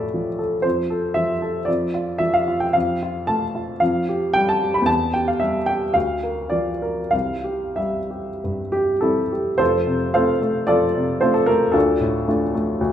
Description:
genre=classical, romantic character piece for solo piano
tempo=91-118 BPM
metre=4/4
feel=rubato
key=F major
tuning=A4 = 439 Hz
part: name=warm baby grand piano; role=solo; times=0.0-12.9 s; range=F1 to B5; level=-18 LUFS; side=equal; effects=none
room=wet recital hall reverb, RT60 1.7 s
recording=none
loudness=-18 LUFS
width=side -10 dB against mid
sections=0.0-9.6 A section; 9.6-12.9 B section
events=none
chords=0.0 Dm; 0.6 F; 1.7 N.C.; 2.7 F; 3.8 Fadd9; 4.9 Emadd11; 5.9 Bb/D; 7.1 C; 9.6 F; 11.7 Dm

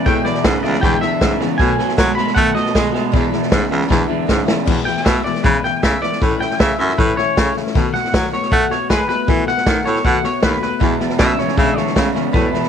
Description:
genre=rockabilly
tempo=156 BPM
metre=4/4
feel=straight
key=E major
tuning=A4 = 440 Hz
part: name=twangy electric guitar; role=melody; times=0.0-12.7 s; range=B4 to B5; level=-21 LUFS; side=equal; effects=lush chorus, tape echo
part: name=picked steel-string acoustic guitar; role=accompaniment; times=0.0-12.7 s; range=E2 to F#4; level=-22 LUFS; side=left 14 dB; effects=none
part: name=electric guitar at the edge of break-up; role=riff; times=0.0-4.7, 10.8-12.7 s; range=E2 to A3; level=-22 LUFS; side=right 15 dB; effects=none
part: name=edgy baritone saxophone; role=bass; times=0.1-12.6 s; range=C#2 to A3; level=-20 LUFS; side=right 1 dB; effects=none
part: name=vintage drum kit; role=drums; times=0.1-12.7 s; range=crash cymbal, hi-hat, kick drum, snare drum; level=-18 LUFS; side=equal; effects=none
room=studio ambience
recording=1960s-style stereo with parts hard left and right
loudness=-14 LUFS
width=side -8 dB against mid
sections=0.0-4.7 A section; 4.7-12.7 B section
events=clean electric guitar solo 0.0-4.7; drum fill 3.9-4.7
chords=0.0 E; 1.6 B7; 3.1 E; 6.2 A; 7.7 B7; 10.8 E

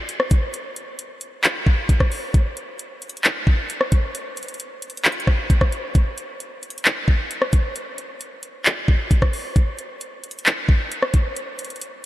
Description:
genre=hip hop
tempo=133 BPM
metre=4/4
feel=half-time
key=none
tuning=none
part: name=trap drum kit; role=drums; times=0.1-11.9 s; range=handclaps, hi-hat, kick drum, rim click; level=-19 LUFS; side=equal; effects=none
room=light reverb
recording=lossy compression artefacts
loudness=-18 LUFS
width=side -16 dB against mid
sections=0.0-12.1 A section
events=none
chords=none

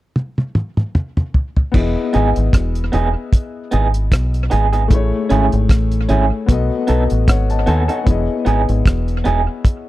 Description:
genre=lovers rock reggae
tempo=76 BPM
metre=4/4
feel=swing 56% on 16ths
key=E major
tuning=A4 = 439 Hz
part: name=cloth-damped thuddy drum kit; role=drums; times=0.2-9.9 s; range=crash cymbal, hi-hat, kick drum, rim click, toms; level=-15 LUFS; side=equal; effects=none
part: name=warm grand piano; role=accompaniment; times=1.7-9.9 s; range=A3 to A5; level=-22 LUFS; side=left 6 dB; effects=tape echo
part: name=deep dub fingered electric bass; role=bass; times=1.7-9.5 s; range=E1 to D#2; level=-17 LUFS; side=equal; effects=none
part: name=electric guitar through a small old amp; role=stabs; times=2.1-9.4 s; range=B3 to A4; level=-19 LUFS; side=right 4 dB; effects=tremolo
room=studio reverb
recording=dry, close 1970s-style studio recording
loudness=-14 LUFS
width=side -16 dB against mid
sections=0.0-1.7 A section; 1.7-9.9 B section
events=drum fill 0.2-1.7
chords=0.0 N.C.; 1.7 Emaj7; 4.9 Amaj7; 6.5 B7; 8.1 Emaj7

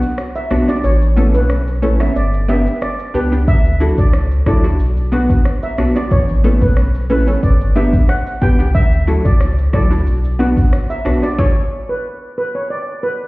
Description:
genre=dancehall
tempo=91 BPM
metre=4/4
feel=straight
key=unclear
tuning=A4 = 440 Hz
part: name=nylon-string guitar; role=arpeggios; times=0.0-11.3 s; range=F#3 to B4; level=-21 LUFS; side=left 2 dB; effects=none
part: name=sub bass with octave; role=bass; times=0.0-11.2 s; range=G1 to D2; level=-15 LUFS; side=equal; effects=none
part: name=afro-pop drum kit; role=drums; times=0.0-11.6 s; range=hi-hat, kick drum, rim click, shaker, snare drum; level=-15 LUFS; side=equal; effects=vintage 12-bit sampler grit
part: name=maracas and timbales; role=percussion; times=0.0-11.4 s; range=none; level=-31 LUFS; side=right 2 dB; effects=none
part: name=steel pan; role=melody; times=0.4-13.2 s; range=B4 to G5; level=-22 LUFS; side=right 1 dB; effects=ping-pong delay
part: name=hollow square pluck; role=accompaniment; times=0.5-11.4 s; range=B3 to A4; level=-22 LUFS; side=right 2 dB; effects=chorus
room=studio reverb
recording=heard muffled through a wall, stone room reverb, EQ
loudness=-12 LUFS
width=side -21 dB against mid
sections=0.0-13.3 A section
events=break 0.0-3.5; stop 11.4-13.3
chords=0.0 Bm; 0.8 Aadd9; 2.2 G; 3.5 Dadd9; 4.8 Bm; 6.1 Aadd9; 7.4 G; 8.8 Dadd9; 10.1 Bm; 11.4 N.C.

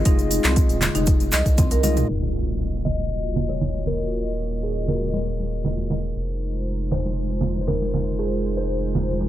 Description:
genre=afro house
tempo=118 BPM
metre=4/4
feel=straight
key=Eb dorian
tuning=A4 = 440 Hz
part: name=dark analog pad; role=sustained chords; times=0.0-9.3 s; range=Ab3 to Eb5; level=-30 LUFS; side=right 1 dB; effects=chorus, sidechain pumping
part: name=tine electric piano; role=stabs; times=0.0-2.1 s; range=Ab3 to Eb5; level=-29 LUFS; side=right 2 dB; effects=medium stereo tremolo, sidechain pumping, digital delay
part: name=round analog bass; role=bass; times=0.0-9.3 s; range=Eb1 to C2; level=-26 LUFS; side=equal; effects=sidechain pumping
part: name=marimba with soft mallets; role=arpeggios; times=0.1-2.0 s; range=C4 to Eb5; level=-28 LUFS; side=left 1 dB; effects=sidechain pumping, digital delay
part: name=deep house drum kit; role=drums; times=0.1-2.1 s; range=handclaps, hi-hat, toms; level=-25 LUFS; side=equal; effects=none
part: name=electronic kick drum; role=drums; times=0.1-1.7 s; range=none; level=-18 LUFS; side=equal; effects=none
part: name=egg shaker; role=percussion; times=0.1-2.1 s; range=none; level=-34 LUFS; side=right 2 dB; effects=none
part: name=congas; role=percussion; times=0.8-9.3 s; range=none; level=-27 LUFS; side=right 2 dB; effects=none
part: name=impact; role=sound effects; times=2.1-4.1 s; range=none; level=-29 LUFS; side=equal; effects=none
part: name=buzzing kalimba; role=melody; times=2.8-9.3 s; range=Ab4 to Eb5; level=-30 LUFS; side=left 1 dB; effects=vintage 12-bit sampler grit, digital delay
room=little or no reverb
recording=low-pass filter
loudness=-20 LUFS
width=side -13 dB against mid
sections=0.0-2.1 A section; 2.1-9.3 B section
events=filter sweep on marimba 0.0-2.1; drum fill 1.6-2.1; impact 2.1-4.1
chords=0.0 Fm7; 2.1 Ebmadd9; 6.2 Fm7

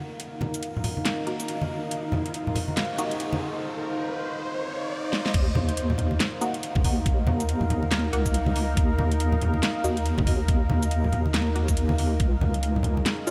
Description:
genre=deep dubstep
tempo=140 BPM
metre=4/4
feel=swing 60% on 16ths, half-time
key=unclear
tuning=A4 = 440 Hz
part: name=deep dark ambient pad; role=sustained chords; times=0.0-13.3 s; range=Db4 to F5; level=-33 LUFS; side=equal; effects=chorus, built-in reverb
part: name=riser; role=sound effects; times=1.4-5.3 s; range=none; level=-41 LUFS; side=equal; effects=none
part: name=dubstep drum kit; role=drums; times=0.2-13.3 s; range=crash cymbal, handclaps, hi-hat, shaker, snare drum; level=-33 LUFS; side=equal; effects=small room ambience
part: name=congas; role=percussion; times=0.4-13.0 s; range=none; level=-33 LUFS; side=equal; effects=none
part: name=filtered dub chord stab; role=stabs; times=1.3-3.1, 6.4-13.3 s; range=Bb3 to Gb4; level=-38 LUFS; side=equal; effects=phaser, analog chorus, cassette tape, dub echo
part: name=deep soft wobble bass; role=bass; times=5.3-13.0 s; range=Db2 to Eb2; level=-27 LUFS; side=equal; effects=chorus, tube saturation
part: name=electronic kick drum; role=drums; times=5.3-12.3 s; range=none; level=-26 LUFS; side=equal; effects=small room ambience
room=moderate huge ambient reverb, RT60 7.3 s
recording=dreamy mix soaked in reverb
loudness=-26 LUFS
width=mono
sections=0.0-5.3 A section; 5.3-13.3 B section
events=build-up 0.0-5.3; riser 1.4-5.3; drum fill 5.1; drop 5.3-13.3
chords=0.0 Eb5; 12.2 Dbsus2

